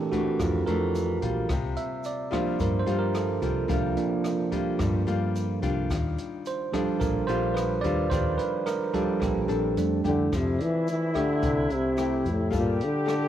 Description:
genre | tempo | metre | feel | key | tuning
bossa nova | 109 BPM | 4/4 | straight | F major | A4 = 440 Hz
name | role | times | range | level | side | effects
bell-like tine electric piano | accompaniment | 0.0-12.8 s | E3 to E5 | -28 LUFS | right 6 dB | cassette tape
nylon-string guitar | accompaniment | 0.0-13.3 s | F2 to A4 | -31 LUFS | left 7 dB | cassette tape
open jazz drum kit | drums | 0.1-13.2 s | hi-hat, kick drum, rim click | -34 LUFS | left 1 dB | cassette tape
egg shaker | percussion | 0.1-13.3 s | none | -54 LUFS | right 8 dB | none
hollow-body short-scale fingered electric bass | bass | 0.4-12.8 s | Bb1 to G2 | -30 LUFS | left 1 dB | none
dark trombone | melody | 10.1-13.3 s | A2 to E3 | -25 LUFS | equal | cassette tape
small flute group | second line | 10.3-13.3 s | E4 to G4 | -33 LUFS | equal | cassette tape
room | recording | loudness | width
light reverb, small room ambience | home recording on cassette | -24 LUFS | side -11 dB against mid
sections
0.0-10.3 A section; 10.3-13.3 B section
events
tine electric piano solo 0.0-10.3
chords
0.0 Bbmaj9#11; 1.5 C7sus4; 5.9 Ebmaj9; 9.8 F6; 10.3 Fmaj9; 12.5 Gm9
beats
0.39 0.94 | 1.49 2.04 2.60 3.15 | 3.70 4.25 4.80 5.36 | 5.91 6.46 7.01 7.56 | 8.11 8.67 9.22 9.77 | 10.32 10.87 11.42 11.97 | 12.53 13.08

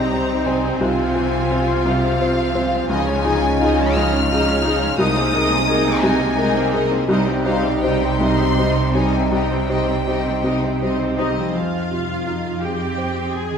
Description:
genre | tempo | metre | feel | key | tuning
cinematic | 52-60 BPM (dotted quarters) | 6/8 | rubato | F minor | A4 = 439 Hz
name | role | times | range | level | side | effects
warm symphonic violin section | melody | 0.0-13.6 s | Eb5 to F6 | -25 LUFS | left 3 dB | none
warm symphonic violin section | second line | 0.0-13.6 s | F4 to Ab5 | -28 LUFS | left 2 dB | none
felt-muted upright piano | accompaniment | 0.0-13.6 s | C2 to C5 | -22 LUFS | equal | none
rich symphonic viola section | accompaniment | 0.0-13.6 s | F3 to Ab4 | -25 LUFS | right 2 dB | none
clear French horn section | sustained chords | 0.0-11.2 s | F3 to F4 | -26 LUFS | left 1 dB | none
concert harp | arpeggios | 0.0-13.6 s | C3 to C6 | -26 LUFS | left 5 dB | none
rich studio cello section | bass | 0.0-13.6 s | C3 to C4 | -26 LUFS | right 3 dB | none
rich symphonic double bass section | bass | 0.0-13.6 s | C2 to F2 | -25 LUFS | right 3 dB | none
room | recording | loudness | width
wet scoring stage reverb, RT60 1.8 s | none | -16 LUFS | side -7 dB against mid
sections
0.0-11.5 A section; 11.5-13.6 B section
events
none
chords
0.0 Cm; 0.8 Fm/C; 2.9 Dbadd9; 5.0 Abadd9/C; 7.1 Cm; 11.5 Fm7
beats
| 0.81 1.86 | 2.89 3.96 | 4.98 6.02 | 7.08 8.20 | 9.31 10.43 | 11.55 12.62

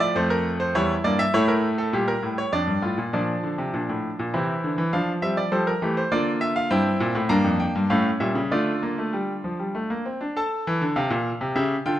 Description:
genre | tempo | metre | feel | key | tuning
classical, baroque-style 4-part fugue for grand piano | 100 BPM | 3/4 | straight | D minor from 6.7 s | A4 = 440 Hz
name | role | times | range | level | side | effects
bright grand piano | solo | 0.0-12.0 s | E2 to Bb5 | -21 LUFS | equal | none
room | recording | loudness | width
moderate recital hall reverb, RT60 1.4 s | close, detailed microphones | -21 LUFS | side -12 dB against mid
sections
0.0-3.1 A section; 3.1-10.4 B section; 10.4-12.0 A section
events
none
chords
0.0 Dm; 0.7 C#dim7/E; 1.3 A7; 2.5 Dm/F; 3.1 Bbmaj9; 4.3 C; 4.9 F; 6.1 Bb/D; 6.7 Gm; 7.3 Bb6/F; 7.9 A; 8.5 Dm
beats
0.16 0.75 | 1.34 1.93 2.53 | 3.13 3.73 4.34 | 4.93 5.53 6.11 | 6.70 7.28 7.89 | 8.51 9.13 9.75 | 10.36 10.96 11.56

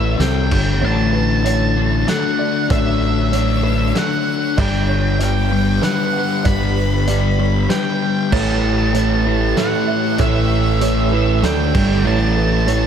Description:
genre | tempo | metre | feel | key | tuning
post-rock | 96 BPM | 3/4 | straight | A mixolydian | A4 = 440 Hz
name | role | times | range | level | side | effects
octave-fuzz lead guitar | melody | 0.0-12.9 s | E5 to B5 | -23 LUFS | right 3 dB | distortion, diffuse ambient delay
shimmering ambient pad | sustained chords | 0.0-12.9 s | F#3 to C#5 | -29 LUFS | right 1 dB | chorus, built-in reverb
felt-muted upright piano | arpeggios | 0.0-12.9 s | A4 to F#5 | -27 LUFS | right 7 dB | lush chorus, diffuse ambient delay
sludgy distorted guitar | riff | 0.0-12.9 s | G2 to D4 | -20 LUFS | left 10 dB | overdrive
growling fingered electric bass | bass | 0.0-12.9 s | G1 to D2 | -18 LUFS | right 1 dB | overdrive
loose indie drum kit | drums | 0.2-12.8 s | crash cymbal, hi-hat, kick drum, snare drum | -24 LUFS | right 1 dB | none
biting overdriven guitar | riff | 8.3-12.9 s | G2 to D4 | -20 LUFS | right 12 dB | none
room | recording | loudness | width
moderate church reverb, RT60 3.4 s | dreamy mix soaked in reverb | -14 LUFS | side -8 dB against mid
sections
0.0-12.9 A section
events
none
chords
0.2 C5; 0.5 G5; 0.8 Dmaj7/A; 4.6 G; 8.3 A6; 11.4 D5; 11.7 G5; 12.1 A6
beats
0.20 | 0.82 1.45 2.08 | 2.70 3.33 3.95 | 4.58 5.20 5.83 | 6.45 7.08 7.70 | 8.32 8.95 9.57 | 10.19 10.81 11.44 | 12.06 12.68

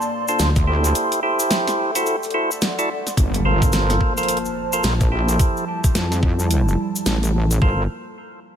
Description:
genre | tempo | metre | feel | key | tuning
glitch hop | 108 BPM | 4/4 | swing 60% on 16ths | G dorian | A4 = 441 Hz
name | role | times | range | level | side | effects
dark analog pad | sustained chords | 0.0-7.9 s | F3 to C6 | -27 LUFS | right 1 dB | chorus, sidechain pumping
cabasa | percussion | 0.0-7.6 s | none | -29 LUFS | left 3 dB | none
percussive tonewheel organ | stabs | 0.3-7.8 s | D4 to D5 | -23 LUFS | right 1 dB | overdrive, stopped rotary speaker, sidechain pumping, dub echo
wobble bass | bass | 0.4-7.9 s | G1 to F2 | -19 LUFS | equal | chorus
dubstep drum kit | drums | 0.4-7.6 s | hi-hat, snare drum | -25 LUFS | equal | none
electronic kick drum | drums | 0.6-7.8 s | none | -18 LUFS | equal | none
impact | sound effects | 3.2-5.4 s | none | -28 LUFS | equal | none
room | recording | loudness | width
little or no reverb | none | -17 LUFS | side -8 dB against mid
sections
0.0-3.2 A section; 3.2-7.6 B section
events
drop 0.0-3.2; impact 3.2-5.4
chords
0.0 Bbmaj9; 1.0 Am7; 2.1 D7; 3.2 Gm11; 5.4 Fmaj9; 7.6 Gm11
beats
0.40 | 0.95 1.51 2.06 2.62 | 3.17 3.73 4.29 4.84 | 5.40 5.95 6.51 7.06 | 7.62

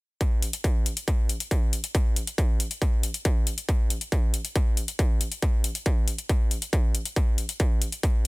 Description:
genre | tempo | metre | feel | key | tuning
uplifting trance | 138 BPM | 4/4 | straight | none | none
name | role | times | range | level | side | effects
electronic hi-hat | drums | 0.2-8.1 s | none | -31 LUFS | left 3 dB | sidechain pumping on hats
electronic kick drum | drums | 0.2-8.1 s | none | -23 LUFS | equal | distortion
room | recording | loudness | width
little or no reverb | dense, heavily limited modern master | -23 LUFS | side -24 dB against mid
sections
0.2-8.3 A section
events
none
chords
none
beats
| 0.21 0.64 1.08 1.51 | 1.95 2.38 2.82 3.25 | 3.69 4.12 4.56 4.99 | 5.43 5.86 6.30 6.73 | 7.17 7.60 8.04

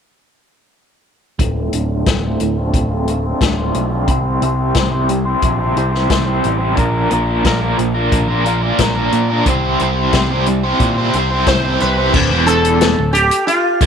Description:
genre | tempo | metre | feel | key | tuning
psychedelic rock | 89 BPM | 4/4 | straight | unclear | A4 = 438 Hz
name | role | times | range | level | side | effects
biting overdriven guitar | riff | 1.4-13.9 s | D2 to C5 | -16 LUFS | equal | tremolo, low-pass filter
overdriven picked electric bass | bass | 1.4-13.9 s | D1 to Bb2 | -19 LUFS | right 1 dB | none
vintage drum kit | drums | 1.4-13.9 s | crash cymbal, hi-hat, kick drum, snare drum | -18 LUFS | left 2 dB | none
sitar | melody | 11.5-13.9 s | F4 to C5 | -15 LUFS | right 1 dB | tape echo
room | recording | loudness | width
moderate spring reverb, RT60 1.6 s, small room reverb | 1960s-style stereo | -13 LUFS | side -7 dB against mid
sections
1.4-12.1 A section; 12.1-13.9 B section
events
filter sweep on overdriven electric guitar 1.4-12.1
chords
1.4 Dm7; 4.1 C; 6.8 Bb; 9.5 C; 12.1 Dm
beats
| 1.40 2.07 2.74 3.42 | 4.09 4.76 5.43 6.10 | 6.78 7.45 8.12 8.79 | 9.46 10.13 10.80 11.47 | 12.14 12.81 13.48

